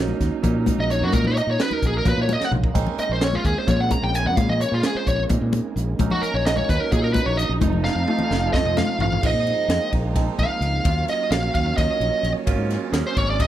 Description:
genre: electric jazz fusion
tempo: 259 BPM (eighths)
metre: 7/8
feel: straight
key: Bb minor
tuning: A4 = 440 Hz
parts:
  - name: barky tine electric piano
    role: accompaniment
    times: 0.0-13.5 s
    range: F3 to Ab4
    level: -28 LUFS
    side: right 9 dB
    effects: overdrive, phaser
  - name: dark studio string section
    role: sustained chords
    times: 0.0-13.5 s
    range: Db3 to F5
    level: -33 LUFS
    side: equal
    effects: none
  - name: fingered electric bass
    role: bass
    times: 0.0-13.5 s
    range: F1 to A#2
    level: -24 LUFS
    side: equal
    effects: none
  - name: congas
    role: percussion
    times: 0.1-9.2 s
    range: none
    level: -27 LUFS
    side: left 5 dB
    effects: none
  - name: crisp fusion drum kit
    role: drums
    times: 0.2-13.5 s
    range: crash cymbal, hi-hat, kick drum, ride cymbal, snare drum, toms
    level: -25 LUFS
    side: equal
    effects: none
  - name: smooth overdriven lead guitar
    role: melody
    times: 0.8-13.5 s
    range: F4 to Bb5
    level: -24 LUFS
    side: equal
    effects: none
room: light reverb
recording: none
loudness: -19 LUFS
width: side -12 dB against mid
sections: 0.0-9.2 A section; 9.2-13.5 A section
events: lead electric guitar solo 0.0-13.5; drum fill 2.4-2.8, 7.8-9.2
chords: 0.0 Bmaj9#11/A# (rootless); 2.8 Bbm11; 6.0 Bmaj9/A# (rootless); 7.6 F7; 9.2 Bb7sus4; 10.9 Ebm9; 12.5 Ab13sus4

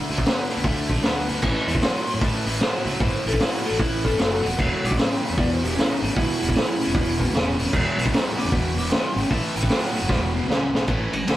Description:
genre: blues rock power trio and southern rock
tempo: 152 BPM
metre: 4/4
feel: swing 64% on 8ths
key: A mixolydian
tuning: A4 = 440 Hz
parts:
  - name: cranked stack guitar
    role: riff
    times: 0.0-11.4 s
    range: E2 to D4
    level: -25 LUFS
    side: equal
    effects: overdrive
  - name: fuzz fingered electric bass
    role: bass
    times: 0.1-11.4 s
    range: E1 to A2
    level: -28 LUFS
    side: equal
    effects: overdrive
  - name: vintage drum kit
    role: drums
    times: 0.1-11.4 s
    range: crash cymbal, hi-hat, kick drum, ride cymbal, snare drum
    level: -23 LUFS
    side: equal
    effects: none
  - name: lead guitar through a small cranked amp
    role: melody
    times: 1.8-9.9 s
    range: D4 to D6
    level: -29 LUFS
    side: left 1 dB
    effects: overdrive, tape echo
room: moderate studio reverb, RT60 0.5 s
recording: rough rehearsal-room recording, tube saturation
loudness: -20 LUFS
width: side -14 dB against mid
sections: 0.0-10.9 A section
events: drum fill 10.1-10.9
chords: 0.0 D5; 1.4 A5; 4.6 E5; 9.3 A5; 10.1 E5; 10.9 A5

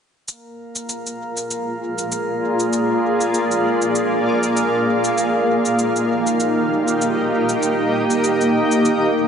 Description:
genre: ambient dub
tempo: 98 BPM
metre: 4/4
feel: swing 56% on 16ths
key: Bb mixolydian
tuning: A4 = 439 Hz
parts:
  - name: granular cloud pad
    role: sustained chords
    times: 1.3-9.3 s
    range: Bb3 to G5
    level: -18 LUFS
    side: equal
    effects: built-in reverb
  - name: shaker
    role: drums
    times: 0.3-9.0 s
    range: none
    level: -28 LUFS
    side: left 1 dB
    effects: overdrive
  - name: drifting glass-harmonics texture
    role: texture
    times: 0.5-9.3 s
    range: Bb3 to Bb4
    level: -24 LUFS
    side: equal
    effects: chorus, built-in reverb
room: wet concert hall reverb, RT60 2.3 s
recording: nothing above 10.4 kHz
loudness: -17 LUFS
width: side -7 dB against mid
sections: 0.3-9.3 A section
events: none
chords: 0.3 Bb7; 5.2 Eb

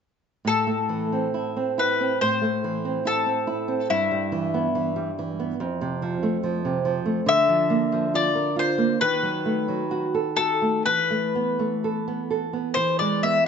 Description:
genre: romantic duo for mandolin and classical guitar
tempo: 69 BPM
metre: 4/4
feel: uneven beats, rubato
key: A minor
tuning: A4 = 440 Hz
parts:
  - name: nylon-string guitar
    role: accompaniment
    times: 0.4-13.5 s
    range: F2 to Bb4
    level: -24 LUFS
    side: right 4 dB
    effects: none
  - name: mandolin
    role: melody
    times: 0.5-13.5 s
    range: E4 to E5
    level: -23 LUFS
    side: left 4 dB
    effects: none
room: moderate recital hall reverb, RT60 1.5 s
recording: nothing above 7.7 kHz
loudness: -21 LUFS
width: side -6 dB against mid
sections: 0.5-13.5 A section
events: none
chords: 0.5 Am; 3.9 Em/G; 5.6 F; 7.3 Bb/D; 9.0 D#dim; 10.9 Esus4; 12.8 E

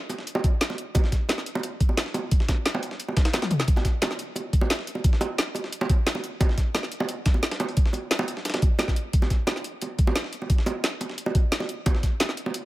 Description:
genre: drum and bass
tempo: 176 BPM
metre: 4/4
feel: straight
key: none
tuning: none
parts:
  - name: drum and bass drum kit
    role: drums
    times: 0.1-12.6 s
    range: hi-hat, snare drum, toms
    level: -28 LUFS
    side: equal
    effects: overdrive
  - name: dusty soul sampler-style drum kit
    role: drums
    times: 0.1-12.6 s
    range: hi-hat, snare drum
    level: -34 LUFS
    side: equal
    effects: high-pass filter on hats, high-pass filter on snare
  - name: bongos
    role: percussion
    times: 0.1-12.5 s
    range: none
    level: -30 LUFS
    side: right 2 dB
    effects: none
  - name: electronic kick drum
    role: drums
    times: 0.4-12.1 s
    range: none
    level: -21 LUFS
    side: equal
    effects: overdrive
room: digital ambience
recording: none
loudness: -22 LUFS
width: side -17 dB against mid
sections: 0.0-12.7 A section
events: drum fill 3.4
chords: none

